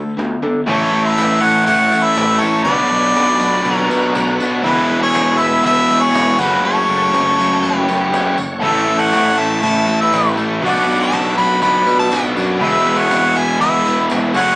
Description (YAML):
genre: classic rock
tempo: 120 BPM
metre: 4/4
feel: straight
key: A major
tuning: A4 = 439 Hz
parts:
  - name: clear harmonica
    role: melody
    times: 0.0-14.6 s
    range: A4 to B5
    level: -16 LUFS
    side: equal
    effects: none
  - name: overdriven electric guitar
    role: riff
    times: 0.0-14.6 s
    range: E2 to A4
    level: -20 LUFS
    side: left 1 dB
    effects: none
  - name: overdriven semi-hollow guitar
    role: riff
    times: 0.0-14.6 s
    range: E2 to A4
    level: -23 LUFS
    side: right 1 dB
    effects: none
  - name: modern bright picked electric bass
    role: bass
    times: 0.0-14.6 s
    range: E1 to D3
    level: -23 LUFS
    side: equal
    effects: none
  - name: cajon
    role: drums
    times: 0.2-14.5 s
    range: none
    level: -27 LUFS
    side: equal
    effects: none
  - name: octave-fuzz lead guitar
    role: second line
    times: 0.7-14.6 s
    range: E4 to F#5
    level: -21 LUFS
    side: equal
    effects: distortion, analog delay
  - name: bright tonewheel organ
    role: sustained chords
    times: 0.7-14.6 s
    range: A3 to A5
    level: -27 LUFS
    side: equal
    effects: none
  - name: distorted electric guitar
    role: riff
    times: 0.7-14.6 s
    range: E2 to B3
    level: -21 LUFS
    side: equal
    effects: overdrive
  - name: tambourine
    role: percussion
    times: 1.2-14.5 s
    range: none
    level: -35 LUFS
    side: right 1 dB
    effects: none
room: wet studio reverb, RT60 0.7 s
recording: band playing live in one room, small speaker sound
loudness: -12 LUFS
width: side -25 dB against mid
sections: 0.7-14.6 A section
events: kick and snare drop out 0.4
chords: 0.0 D5; 0.7 A; 2.7 Bm; 4.6 E; 6.4 F#m; 8.6 A; 10.6 Bm; 12.6 E